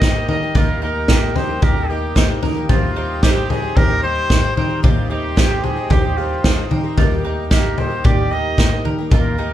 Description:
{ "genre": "indie folk with a building arrangement", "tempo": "112 BPM", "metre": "4/4", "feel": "straight", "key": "Eb major", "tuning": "A4 = 442 Hz", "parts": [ { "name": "warm trumpet", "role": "melody", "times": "0.0-9.5 s", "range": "F4 to Eb5", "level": "-24 LUFS", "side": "equal", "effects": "none" }, { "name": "felt-muted upright piano", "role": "accompaniment", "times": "0.0-9.5 s", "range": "Eb2 to C5", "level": "-31 LUFS", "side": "right 3 dB", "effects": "none" }, { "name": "picked twelve-string acoustic guitar", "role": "accompaniment", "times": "0.0-9.5 s", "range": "Eb3 to G4", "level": "-28 LUFS", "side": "left 4 dB", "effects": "none" }, { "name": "hand-pumped harmonium", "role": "sustained chords", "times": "0.0-9.5 s", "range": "Eb4 to G5", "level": "-31 LUFS", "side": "equal", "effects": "none" }, { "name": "mandolin", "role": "arpeggios", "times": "0.0-9.5 s", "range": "Eb4 to C5", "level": "-27 LUFS", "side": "right 5 dB", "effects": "none" }, { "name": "fingered electric bass", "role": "bass", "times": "0.0-9.5 s", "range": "Eb2 to Eb3", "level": "-24 LUFS", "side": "equal", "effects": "none" }, { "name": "unplugged drum kit", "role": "drums", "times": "0.0-9.2 s", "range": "kick drum, snare drum, toms", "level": "-16 LUFS", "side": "equal", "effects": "none" } ], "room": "light reverb", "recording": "band playing live in one room", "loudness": "-15 LUFS", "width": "side -12 dB against mid", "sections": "0.0-9.5 A section", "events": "none", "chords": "0.0 Eb" }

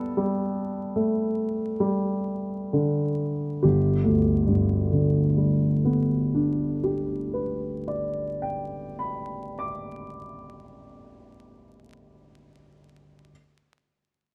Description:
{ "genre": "classical, impressionist solo piano", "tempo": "20-26 BPM (dotted quarters)", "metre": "9/8", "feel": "rubato", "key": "G major", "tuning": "A4 = 440 Hz", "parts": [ { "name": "clear concert grand piano", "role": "solo", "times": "0.0-13.3 s", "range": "G1 to D6", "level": "-26 LUFS", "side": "equal", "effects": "none" } ], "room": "light reverb", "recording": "close, detailed microphones, vinyl crackle", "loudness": "-25 LUFS", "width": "mono", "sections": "0.0-3.6 A section; 3.6-11.1 B section", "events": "slowing down 0.0-3.6", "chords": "0.0 Gadd9; 3.6 G" }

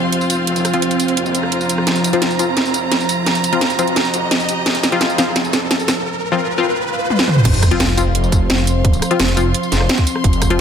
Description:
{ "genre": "dark technical drum and bass", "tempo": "172 BPM", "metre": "4/4", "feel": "straight", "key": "unclear", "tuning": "A4 = 440 Hz", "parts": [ { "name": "dark analog pad", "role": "sustained chords", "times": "0.0-10.6 s", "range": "F3 to C5", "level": "-22 LUFS", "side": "right 1 dB", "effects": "chorus, sidechain pumping" }, { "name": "wide detuned saw bass", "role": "bass", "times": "0.0-10.6 s", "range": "Eb1 to F1", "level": "-22 LUFS", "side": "equal", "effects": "chorus, overdrive, high-pass filter" }, { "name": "riser, swell and sub drop", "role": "sound effects", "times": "1.0-8.8 s", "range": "none", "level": "-24 LUFS", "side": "equal", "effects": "none" }, { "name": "rich chamber string section", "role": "texture", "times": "0.0-10.6 s", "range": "C4 to C6", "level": "-22 LUFS", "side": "right 1 dB", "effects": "sidechain pumping" }, { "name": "drum and bass drum kit", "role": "drums", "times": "0.1-10.6 s", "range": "crash cymbal, hi-hat, rim click, snare drum, tambourine, toms", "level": "-18 LUFS", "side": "right 1 dB", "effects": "overdrive" }, { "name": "filtered dub chord stab", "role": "stabs", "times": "0.7-10.6 s", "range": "F3 to F4", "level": "-21 LUFS", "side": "left 4 dB", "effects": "chorus, cassette tape, ping-pong delay" }, { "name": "electronic kick drum", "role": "drums", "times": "7.5-10.5 s", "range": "none", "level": "-15 LUFS", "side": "equal", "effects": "overdrive" } ], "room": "light reverb, digital ambience", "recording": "none", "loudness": "-14 LUFS", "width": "side -8 dB against mid", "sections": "0.0-7.5 A section; 7.5-10.6 B section", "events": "build-up 0.0-7.5; riser 1.0-7.5; drum fill 1.9-6.1, 7.1-7.5; swell 6.8-7.5; drop 7.5-10.6; impact 7.5-8.8", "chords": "0.0 F5" }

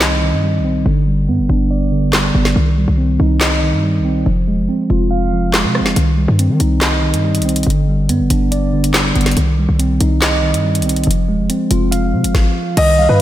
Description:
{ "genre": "hip hop, drill", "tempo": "141 BPM", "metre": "4/4", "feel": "half-time", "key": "C harmonic minor", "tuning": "A4 = 439 Hz", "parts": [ { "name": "mellow tine electric piano", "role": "accompaniment", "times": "0.0-13.2 s", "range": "D3 to F5", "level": "-16 LUFS", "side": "right 1 dB", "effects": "wide subtle chorus, low-pass filter" }, { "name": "hard-hitting 808-style bass", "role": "bass", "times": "0.0-13.2 s", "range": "Eb1 to Eb3", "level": "-16 LUFS", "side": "equal", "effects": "none" }, { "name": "drill drum kit", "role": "drums", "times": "0.0-12.9 s", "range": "crash cymbal, handclaps, hi-hat, kick drum, rim click, snare drum", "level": "-18 LUFS", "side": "equal", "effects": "none" }, { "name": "dark concert grand piano", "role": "melody", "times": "12.8-13.2 s", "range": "B4 to Eb5", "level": "-12 LUFS", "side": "equal", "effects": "none" }, { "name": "warm velvety synth lead", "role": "second line", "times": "13.0-13.2 s", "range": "F5", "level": "-19 LUFS", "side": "left 5 dB", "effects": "chorus" } ], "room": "light reverb, digital ambience", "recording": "none", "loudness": "-12 LUFS", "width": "side -13 dB against mid", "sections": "0.0-12.8 A section", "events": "break 0.0-6.0; filter sweep on tine electric piano 0.0-6.0", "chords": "0.0 Cm; 0.9 G; 2.6 Cm; 4.3 Fm; 6.0 Cm; 7.7 G; 9.4 Cm; 11.1 Fm" }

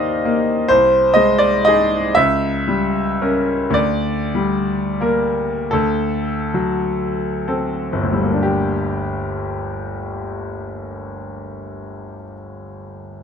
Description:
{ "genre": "classical, romantic nocturne for solo piano", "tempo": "20-44 BPM (dotted quarters)", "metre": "6/8", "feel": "rubato", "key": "G minor", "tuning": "A4 = 441 Hz", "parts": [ { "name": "bright grand piano", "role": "solo", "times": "0.0-13.2 s", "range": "G1 to F5", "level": "-17 LUFS", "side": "equal", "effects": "none" } ], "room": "light reverb", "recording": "close, detailed microphones", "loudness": "-16 LUFS", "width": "side -7 dB against mid", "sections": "0.0-8.4 A section; 8.4-13.2 B section", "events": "slowing down 0.0-8.4", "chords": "0.0 Eb; 0.7 Ab/C; 2.1 C#dim7; 3.7 Gm/D; 5.7 D7; 8.4 Gm" }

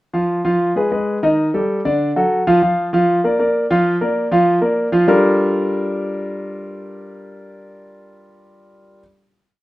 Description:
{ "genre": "jazz", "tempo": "195 BPM", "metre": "4/4", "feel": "straight", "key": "G minor", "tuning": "A4 = 440 Hz", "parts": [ { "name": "warm grand piano", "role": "solo", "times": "0.1-9.0 s", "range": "D3 to F5", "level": "-15 LUFS", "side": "equal", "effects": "none" } ], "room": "wet studio reverb, RT60 0.6 s", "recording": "rough home demo mix", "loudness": "-14 LUFS", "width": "side -17 dB against mid", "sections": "0.1-5.1 A section; 5.1-7.5 final chord", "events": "none", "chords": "0.1 N.C.; 0.8 Abm; 1.4 Ebmaj7#11; 2.0 D; 2.6 Bb/F; 5.1 Gm9" }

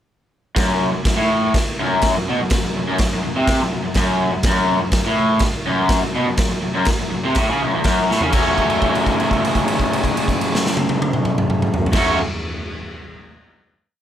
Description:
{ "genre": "garage rock duo or trio", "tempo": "123 BPM", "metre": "4/4", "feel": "straight", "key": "F# minor", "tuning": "A4 = 441 Hz", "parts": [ { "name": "raw garage guitar", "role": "riff", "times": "0.6-12.2 s", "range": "E2 to F#4", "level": "-18 LUFS", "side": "equal", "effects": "overdrive" }, { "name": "raw garage drum kit", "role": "drums", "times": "0.6-12.1 s", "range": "crash cymbal, kick drum, snare drum, toms", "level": "-20 LUFS", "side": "equal", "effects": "none" } ], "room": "moderate spring reverb, RT60 1.8 s, small room ambience", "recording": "none", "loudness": "-16 LUFS", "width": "side -10 dB against mid", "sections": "0.5-8.3 riff; 8.3-12.2 final chord", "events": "drum fill 8.1; held note 8.3-11.9", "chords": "0.5 N.C.; 8.3 F#m" }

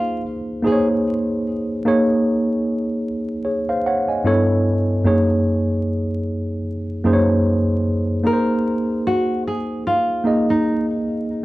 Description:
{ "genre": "hip hop", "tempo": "75 BPM", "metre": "4/4", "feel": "swing 57% on 16ths", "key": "unclear", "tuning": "A4 = 439 Hz", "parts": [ { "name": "nylon-string guitar", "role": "melody", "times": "0.0-0.9, 8.3-10.9 s", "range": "Eb4 to Bb4", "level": "-22 LUFS", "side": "equal", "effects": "low-pass filter, plate reverb" }, { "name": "mellow tine electric piano", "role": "accompaniment", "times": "0.0-11.4 s", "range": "Gb2 to Ab5", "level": "-18 LUFS", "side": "equal", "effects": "medium stereo tremolo, low-pass filter, plate reverb" } ], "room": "wet small room reverb, RT60 0.6 s", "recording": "vinyl crackle", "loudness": "-17 LUFS", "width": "side -18 dB against mid", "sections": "0.0-11.4 A section", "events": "none", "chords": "0.0 Bbm9; 1.9 Eb7sus4; 4.3 Gadd9; 5.1 Gbadd9; 8.3 Abadd9" }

